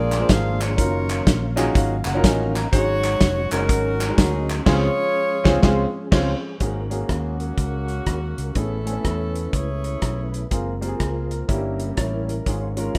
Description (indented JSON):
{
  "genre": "uptempo gospel",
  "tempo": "123 BPM",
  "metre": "4/4",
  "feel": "swing 63% on 8ths",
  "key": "unclear",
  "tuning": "A4 = 439 Hz",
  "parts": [
    { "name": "bright saxophone section", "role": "melody", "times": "0.0-10.5 s", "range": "Bb3 to F5", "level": "-28 LUFS", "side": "equal", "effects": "none" },
    { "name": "warm upright piano", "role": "accompaniment", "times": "0.0-13.0 s", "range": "G2 to Bb5", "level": "-27 LUFS", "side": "equal", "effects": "none" },
    { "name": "mellow tonewheel organ", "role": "sustained chords", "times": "0.0-13.0 s", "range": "Eb3 to Bb5", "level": "-34 LUFS", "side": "equal", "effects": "slow rotary speaker, chorus vibrato" },
    { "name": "fingered electric bass", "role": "bass", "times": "0.0-13.0 s", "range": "F1 to E2", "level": "-28 LUFS", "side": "equal", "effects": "none" },
    { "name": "warm soul drum kit", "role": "drums", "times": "0.1-13.0 s", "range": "crash cymbal, hi-hat, kick drum, rim click, snare drum", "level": "-23 LUFS", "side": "equal", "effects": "none" },
    { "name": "group handclap", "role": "percussion", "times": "0.1-4.6 s", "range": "none", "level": "-35 LUFS", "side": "equal", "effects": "none" },
    { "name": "mellow French horn section", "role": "sustained chords", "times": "6.6-13.0 s", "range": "F3 to B4", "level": "-43 LUFS", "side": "equal", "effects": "none" }
  ],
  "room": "little or no reverb",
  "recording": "rough home demo mix",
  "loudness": "-22 LUFS",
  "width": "mono",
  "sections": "0.0-6.6 A section; 6.6-13.0 B section",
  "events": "upright piano fill 1.3-2.7; tonewheel organ fill 1.8-2.7; band accent 4.7-6.6",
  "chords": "0.0 Bb7; 0.8 Ebm9/Gb; 2.7 Ab7sus4; 4.7 Dbmaj7; 6.6 Ab9sus4; 8.6 Amaj9; 10.5 Gbmaj9#11; 11.5 Gdim7; 12.5 Db/Ab",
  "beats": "0.29 | 0.78 1.26 1.75 2.24 | 2.72 3.21 3.69 4.18 | 4.66 5.15 5.63 6.12 | 6.61 7.10 7.58 8.07 | 8.56 9.05 9.54 10.03 | 10.51 11.00 11.49 11.98 | 12.47 12.95"
}